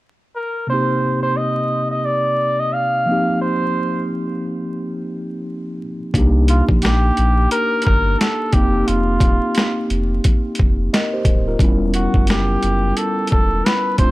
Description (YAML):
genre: lo-fi hip hop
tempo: 88 BPM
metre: 4/4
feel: swing 59% on 16ths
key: C dorian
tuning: A4 = 440 Hz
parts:
  - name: trumpet with bucket mute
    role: melody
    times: 0.4-14.1 s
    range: F4 to F5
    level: -20 LUFS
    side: equal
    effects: low-pass filter
  - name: mellow tine electric piano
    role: accompaniment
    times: 0.7-14.1 s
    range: C3 to Eb5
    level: -21 LUFS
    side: equal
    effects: medium stereo tremolo, cassette tape, low-pass filter
  - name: soft dub sub bass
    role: bass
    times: 6.1-14.1 s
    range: D1 to C2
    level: -18 LUFS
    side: equal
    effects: none
  - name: boom bap sampler-style drum kit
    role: drums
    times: 6.1-14.1 s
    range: hi-hat, kick drum, snare drum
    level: -17 LUFS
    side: equal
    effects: overdrive
room: little or no reverb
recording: dry, gritty hardware recording, vinyl crackle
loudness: -15 LUFS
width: side -18 dB against mid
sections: 0.7-6.1 A section; 6.1-14.1 B section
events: none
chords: 0.0 N.C.; 0.7 Cm7; 3.1 F7sus4; 6.1 Cm7; 8.5 F7sus4; 11.6 Em69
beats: 0.01 | 0.69 1.37 2.05 2.73 | 3.42 4.10 4.78 5.46 | 6.14 6.82 7.51 8.19 | 8.87 9.55 10.23 10.91 | 11.60 12.28 12.96 13.64